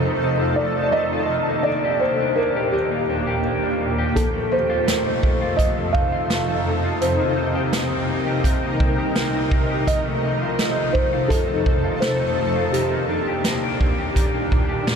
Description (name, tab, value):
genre	dream pop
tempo	84 BPM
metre	4/4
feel	straight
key	F mixolydian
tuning	A4 = 441 Hz
part	felt-muted upright piano	melody	0.0-14.8 s	G4 to F5	-24 LUFS	equal	ping-pong delay
part	granular cloud pad	sustained chords	0.0-15.0 s	C2 to Bb4	-23 LUFS	equal	built-in reverb, ensemble chorus
part	electric guitar through a small old amp	arpeggios	0.0-15.0 s	F2 to G4	-26 LUFS	left 2 dB	wide subtle chorus, ping-pong delay
part	vintage drum kit	drums	4.2-15.0 s	hi-hat, kick drum, snare drum	-23 LUFS	right 1 dB	none
room	wet huge ambient reverb, RT60 7.5 s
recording	dreamy mix soaked in reverb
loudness	-18 LUFS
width	side -6 dB against mid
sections	0.0-15.0 A section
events	none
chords	0.0 F7; 1.3 Ebmaj7; 4.2 F7; 7.0 Cm7; 9.9 F7; 12.7 Ebmaj7